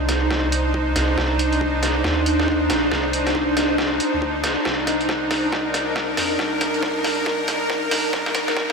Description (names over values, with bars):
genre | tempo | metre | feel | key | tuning
deep dubstep | 138 BPM | 4/4 | swing 61% on 16ths, half-time | C minor | A4 = 439 Hz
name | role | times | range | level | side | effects
bowed-like drone | sustained chords | 0.0-8.7 s | D4 to C5 | -21 LUFS | equal | built-in reverb
soft dub sub bass | bass | 0.0-8.7 s | Bb1 to F2 | -27 LUFS | equal | none
trip hop sampler-style drum kit | drums | 0.1-8.7 s | hi-hat, snare drum | -24 LUFS | equal | overdrive, high-pass filter on hats, high-pass filter on snare
electronic kick drum | drums | 0.3-8.7 s | none | -36 LUFS | equal | none
room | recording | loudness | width
wet huge ambient reverb, RT60 8.9 s | dreamy mix soaked in reverb, high-pass filter | -18 LUFS | side -4 dB against mid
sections
0.0-8.7 A section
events
build-up 0.0-8.7; drum fill 0.0-8.7; filter sweep 0.0-8.7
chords
0.0 Cmadd9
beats
0.31 0.74 | 1.18 1.61 2.05 2.48 | 2.92 3.35 3.79 4.22 | 4.65 5.09 5.52 5.96 | 6.39 6.83 7.26 7.70 | 8.13 8.57